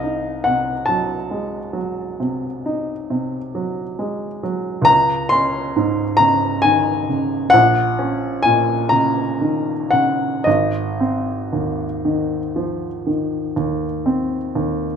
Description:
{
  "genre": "classical, romantic nocturne for solo piano",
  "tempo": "37-48 BPM (dotted quarters)",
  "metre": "12/8",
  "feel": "rubato",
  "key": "unclear",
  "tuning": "A4 = 437 Hz",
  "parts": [
    { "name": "warm baby grand piano", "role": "solo", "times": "0.0-15.0 s", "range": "Ab1 to C6", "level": "-17 LUFS", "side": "equal", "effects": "none" }
  ],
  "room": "moderate large studio reverb, RT60 1.3 s",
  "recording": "minimal, uncompressed stereo recording",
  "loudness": "-17 LUFS",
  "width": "side -7 dB against mid",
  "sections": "0.0-15.0 A section",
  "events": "none",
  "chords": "0.0 Cdim7; 4.9 Db5; 7.5 Gb/Bb; 10.5 Ab"
}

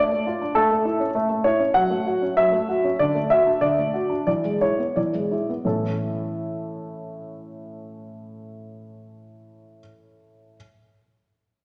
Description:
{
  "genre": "classical-period piano sonatina",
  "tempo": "83-104 BPM",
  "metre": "4/4",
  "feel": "rubato",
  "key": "A major",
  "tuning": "A4 = 440 Hz",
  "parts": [
    { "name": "warm baby grand piano", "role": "solo", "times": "0.0-10.6 s", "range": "A2 to F#5", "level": "-23 LUFS", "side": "equal", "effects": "none" }
  ],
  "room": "wet recital hall reverb, RT60 1.8 s",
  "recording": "none",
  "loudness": "-22 LUFS",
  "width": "mono",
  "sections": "0.0-5.7 A section; 5.7-8.3 B section",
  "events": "slowing down 0.0-5.7",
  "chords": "0.0 Dm/A; 0.6 A; 1.8 F#m; 3.0 D; 4.3 E7; 5.7 A"
}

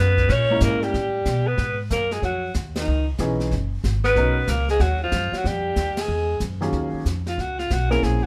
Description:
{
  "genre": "jazz, small-group swing and bop",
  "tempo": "186 BPM",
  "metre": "4/4",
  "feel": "swing 64% on 8ths",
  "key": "Eb minor",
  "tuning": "A4 = 440 Hz",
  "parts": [
    { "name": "growling alto saxophone", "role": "melody", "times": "0.0-8.3 s", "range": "Eb4 to Db5", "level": "-26 LUFS", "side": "equal", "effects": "none" },
    { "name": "warm tenor saxophone", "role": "second line", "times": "0.0-6.4 s", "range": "Eb3 to Db4", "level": "-30 LUFS", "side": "equal", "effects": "none" },
    { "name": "upright bass", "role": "bass", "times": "0.0-8.3 s", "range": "Gb1 to B2", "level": "-26 LUFS", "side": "equal", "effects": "none" },
    { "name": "jazz brush drum kit", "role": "drums", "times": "0.2-8.3 s", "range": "brushed snare drum, hi-hat, kick drum, ride cymbal, snare drum", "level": "-34 LUFS", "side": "equal", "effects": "none" },
    { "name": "warm baby grand piano", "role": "accompaniment", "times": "0.5-0.9, 3.2-4.4, 6.6-8.3 s", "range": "Eb2 to Bb4", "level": "-28 LUFS", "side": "equal", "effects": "none" }
  ],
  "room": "light reverb",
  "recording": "none",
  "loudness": "-22 LUFS",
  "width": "mono",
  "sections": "0.0-6.7 A section; 6.7-8.3 B section",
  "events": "band accent 2.7, 5.9; alto saxophone solo 6.7-8.3",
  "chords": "0.3 Bbm7b5; 0.9 Asus2; 1.6 Ab5; 2.9 Dbm9; 3.5 Gbsus2; 4.2 Bmaj9; 5.4 Ebadd9; 6.1 Eadd9; 6.7 Ebm11"
}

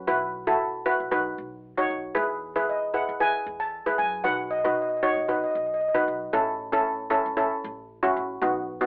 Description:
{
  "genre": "calypso",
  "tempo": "115 BPM",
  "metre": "4/4",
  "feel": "swing 53% on 16ths",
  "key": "unclear",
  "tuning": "A4 = 440 Hz",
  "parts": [
    { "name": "upright bass", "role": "bass", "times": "0.0-8.9 s", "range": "A1 to E3", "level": "-48 LUFS", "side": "equal", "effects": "none" },
    { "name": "steel pan", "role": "accompaniment", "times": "0.1-8.9 s", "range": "B3 to C#5", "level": "-27 LUFS", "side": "equal", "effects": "none" },
    { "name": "steel pan", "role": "melody", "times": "2.7-6.0 s", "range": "D#5 to A5", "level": "-28 LUFS", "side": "equal", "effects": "none" }
  ],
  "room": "moderate small room reverb, RT60 0.5 s",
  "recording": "telephone sound, faint mains hum",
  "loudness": "-26 LUFS",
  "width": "mono",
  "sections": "0.0-8.9 A section",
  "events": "none",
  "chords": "0.1 Bsus4; 1.1 Badd9; 2.2 E; 4.2 B; 6.3 A"
}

